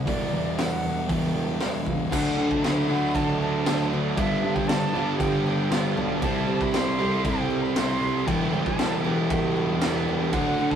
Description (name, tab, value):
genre	rock, shoegaze and dream pop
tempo	117 BPM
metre	4/4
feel	straight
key	unclear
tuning	A4 = 440 Hz
part	picked twelve-string acoustic guitar	arpeggios	0.0-10.8 s	E3 to G4	-34 LUFS	right 5 dB	none
part	overdriven semi-hollow guitar	riff	0.0-10.8 s	G2 to E4	-31 LUFS	right 6 dB	none
part	thick fuzz guitar	riff	0.0-10.8 s	E2 to D4	-28 LUFS	left 3 dB	distortion
part	breathy reedy silver concert flute	melody	0.1-10.8 s	D5 to C6	-32 LUFS	right 2 dB	analog delay
part	dark grand piano	bass	0.1-10.8 s	E1 to D3	-30 LUFS	equal	none
part	raw garage drum kit	drums	0.1-10.8 s	crash cymbal, hi-hat, kick drum, snare drum	-29 LUFS	equal	none
part	distorted electric guitar	riff	2.1-10.8 s	G2 to E4	-32 LUFS	right 2 dB	overdrive
room	moderate studio reverb, RT60 0.5 s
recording	rough rehearsal-room recording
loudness	-22 LUFS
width	side -8 dB against mid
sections	0.0-2.1 A section; 2.1-10.8 B section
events	none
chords	0.1 Em7; 2.1 D; 4.2 G6; 6.2 C6; 8.3 Em7